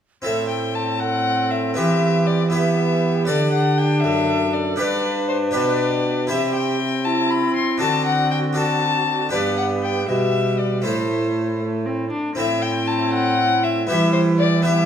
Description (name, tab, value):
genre	classical, renaissance-style consort dance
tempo	79 BPM (dotted quarters)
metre	6/8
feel	straight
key	A dorian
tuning	A4 = 445 Hz
part	harpsichord	accompaniment	0.2-14.9 s	F#2 to F#5	-24 LUFS	equal	none
part	warm violin	melody	0.3-14.9 s	C5 to C6	-22 LUFS	left 4 dB	none
part	mellow tenor recorder	second line	0.3-14.9 s	E4 to B4	-25 LUFS	right 4 dB	none
part	warm viola	accompaniment	0.3-14.9 s	G3 to D4	-25 LUFS	left 2 dB	none
part	mellow trombone	bass	0.3-14.9 s	F#2 to E3	-26 LUFS	right 2 dB	none
room	wet recital hall reverb, RT60 1.3 s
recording	minimal, uncompressed stereo recording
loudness	-18 LUFS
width	side -8 dB against mid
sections	0.3-12.4 A section; 12.4-14.9 A section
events	none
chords	0.3 Am; 1.8 Em; 3.3 D; 4.8 G; 6.3 C; 7.8 D; 9.3 G; 10.8 Am; 13.9 Em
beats	| 0.25 1.01 | 1.78 2.53 | 3.29 4.04 | 4.80 5.55 | 6.30 7.05 | 7.81 8.56 | 9.32 10.08 | 10.85 11.62 | 12.39 13.15 | 13.91 14.66